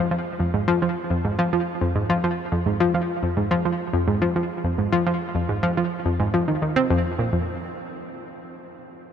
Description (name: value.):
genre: ambient.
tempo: 106 BPM.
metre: 4/4.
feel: straight.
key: F minor.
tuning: A4 = 440 Hz.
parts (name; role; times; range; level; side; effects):
analog pluck; solo; 0.0-7.6 s; F2 to C4; -21 LUFS; equal; chorus, tape echo.
room: moderate huge ambient reverb, RT60 8.7 s.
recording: none.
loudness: -20 LUFS.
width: side -8 dB against mid.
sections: 0.0-7.3 A section; 7.3-9.1 B section.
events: none.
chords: none.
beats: | 0.54 1.10 1.67 2.23 | 2.80 3.37 3.93 4.50 | 5.06 5.63 6.20 6.76 | 7.33.